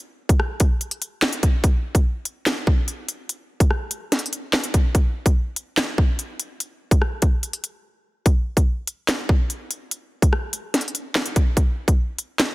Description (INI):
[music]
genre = hip hop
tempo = 145 BPM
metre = 4/4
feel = half-time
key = none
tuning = none
[part]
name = drill drum kit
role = drums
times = 0.3-12.5 s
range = handclaps, hi-hat, kick drum, rim click, snare drum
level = -18 LUFS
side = equal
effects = soft clipping on snare
[sound]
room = little or no reverb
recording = dense, heavily limited modern master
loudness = -20 LUFS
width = side -20 dB against mid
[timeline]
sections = 0.0-8.3 A section; 8.3-12.5 B section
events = silent gap 7.8-8.3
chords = none